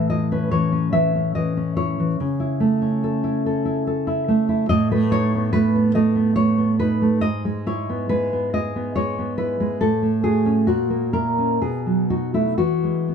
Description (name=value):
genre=romantic piece for solo classical guitar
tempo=61-73 BPM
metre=3/4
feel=rubato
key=E major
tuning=A4 = 440 Hz
part: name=nylon-string guitar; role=solo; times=0.0-13.1 s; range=G#2 to E5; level=-18 LUFS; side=equal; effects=none
room=light reverb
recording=close, detailed microphones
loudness=-18 LUFS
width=side -7 dB against mid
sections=0.0-13.1 A section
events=none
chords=0.0 A; 2.2 A/C#; 4.7 B7/A; 7.2 E/G#; 9.8 F#m/A; 10.7 F#7/A#; 11.6 B6; 12.6 E